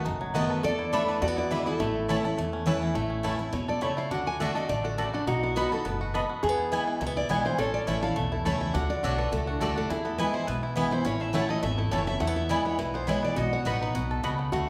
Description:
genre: bluegrass.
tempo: 208 BPM.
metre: 4/4.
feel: swing 53% on 8ths.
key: A major.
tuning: A4 = 440 Hz.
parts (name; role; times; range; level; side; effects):
bluegrass banjo; melody; 0.0-14.7 s; E3 to A4; -37 LUFS; equal; none.
lap resonator guitar; second line; 0.0-14.7 s; E4 to A4; -37 LUFS; equal; none.
picked steel-string acoustic guitar; accompaniment; 0.0-14.7 s; E2 to F#4; -33 LUFS; equal; none.
upright bass; bass; 0.1-14.7 s; F#1 to E2; -36 LUFS; equal; none.
picked steel-string acoustic guitar; melody; 0.3-14.2 s; D4 to G#5; -35 LUFS; equal; none.
mandolin; stabs; 0.3-14.3 s; A3 to B5; -36 LUFS; equal; none.
room: wet large studio reverb, RT60 1.4 s.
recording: band playing live in one room.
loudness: -28 LUFS.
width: mono.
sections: 0.0-3.0 A section; 3.0-12.2 B section; 12.2-14.7 B section.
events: steel-string acoustic guitar solo 3.0-14.7.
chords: 0.0 B7; 0.6 E7sus4; 1.2 E7; 1.8 A; 4.1 D; 5.3 B; 6.4 E; 7.6 A; 8.7 D; 9.9 E; 11.1 A; 12.2 E; 13.4 B.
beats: 0.05 0.34 | 0.64 0.93 1.22 1.51 | 1.80 2.09 2.38 2.67 | 2.96 3.25 3.54 3.83 | 4.12 4.41 4.70 4.99 | 5.28 5.57 5.86 6.14 | 6.43 6.72 7.01 7.30 | 7.59 7.88 8.17 8.46 | 8.75 9.04 9.32 9.61 | 9.90 10.19 10.48 10.77 | 11.06 11.35 11.63 11.92 | 12.21 12.50 12.79 13.08 | 13.37 13.66 13.95 14.24 | 14.53.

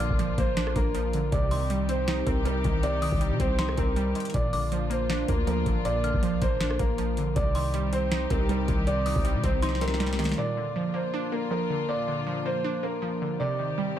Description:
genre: hip hop, trap.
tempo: 159 BPM.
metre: 4/4.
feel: half-time.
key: Bb major.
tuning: A4 = 440 Hz.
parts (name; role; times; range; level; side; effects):
dark concert grand piano; melody; 0.0-14.0 s; Bb4 to D5; -31 LUFS; equal; ping-pong delay.
dark detuned synth bell; second line; 0.0-10.0 s; C6 to F6; -39 LUFS; left 3 dB; chorus, ping-pong delay.
glassy wavetable pluck; accompaniment; 0.0-14.0 s; Bb2 to Eb4; -30 LUFS; right 2 dB; chorus.
warm studio string section; sustained chords; 0.0-14.0 s; C3 to G4; -36 LUFS; left 3 dB; none.
warm 808-style bass; bass; 0.0-10.3 s; A1 to C3; -29 LUFS; equal; none.
booming analog drum machine; drums; 0.0-10.4 s; hi-hat, kick drum, rim click, snare drum; -29 LUFS; equal; none.
room: light reverb.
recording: none.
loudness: -24 LUFS.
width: side -10 dB against mid.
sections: 0.0-10.4 A section; 10.4-14.0 A section.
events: drum fill 9.6-10.4.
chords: 0.0 Bb; 1.3 Cm; 4.3 Bb; 7.4 Cm; 10.4 Bb; 13.4 Cm.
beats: 0.19 0.57 0.94 | 1.32 1.70 2.08 2.46 | 2.83 3.21 3.59 3.96 | 4.34 4.72 5.10 5.47 | 5.85 6.23 6.61 6.98 | 7.36 7.74 8.12 8.49 | 8.87 9.25 9.62 10.00 | 10.38 10.76 11.13 11.51 | 11.89 12.27 12.64 13.02 | 13.40 13.78.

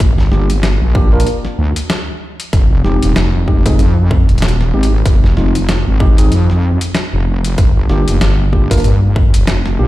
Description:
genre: glitch hop.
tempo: 95 BPM.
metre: 4/4.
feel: swing 58% on 16ths.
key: G phrygian.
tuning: A4 = 444 Hz.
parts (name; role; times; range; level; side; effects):
wobble bass; bass; 0.0-9.9 s; Eb1 to G2; -12 LUFS; equal; chorus, overdrive.
boom bap sampler-style drum kit; drums; 0.0-9.8 s; hi-hat, snare drum; -20 LUFS; equal; none.
electronic kick drum; drums; 0.0-9.3 s; none; -12 LUFS; equal; none.
tine electric piano; stabs; 0.3-9.9 s; Ab3 to Bb4; -20 LUFS; equal; vintage 12-bit sampler grit, sidechain pumping, digital delay.
room: digital ambience.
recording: played on a big sound system in a bare room, large studio reverb.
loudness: -10 LUFS.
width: side -16 dB against mid.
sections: 0.0-9.9 A section.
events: none.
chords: 0.0 Gm7; 2.5 Fm9; 7.6 Gm7.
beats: | 0.00 0.64 1.27 1.90 | 2.53 3.16 3.79 4.42 | 5.06 5.69 6.32 6.95 | 7.58 8.21 8.85 9.48.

